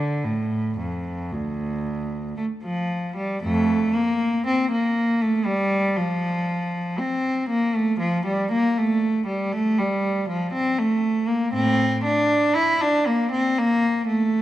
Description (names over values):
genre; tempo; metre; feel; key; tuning
classical, baroque-style suite movement for unaccompanied cello; 59 BPM; 4/4; rubato; D minor; A4 = 440 Hz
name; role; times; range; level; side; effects
rich cello; solo; 0.0-14.4 s; D2 to E4; -20 LUFS; equal; none
room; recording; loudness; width
moderate recital hall reverb, RT60 1.6 s; dark, warm production; -20 LUFS; side -13 dB against mid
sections
0.0-3.4 A section; 3.4-14.4 A section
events
none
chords
none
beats
0.25 1.32 2.37 | 3.42 4.46 5.46 6.49 | 7.50 8.50 9.51 10.52 | 11.53 12.54 13.56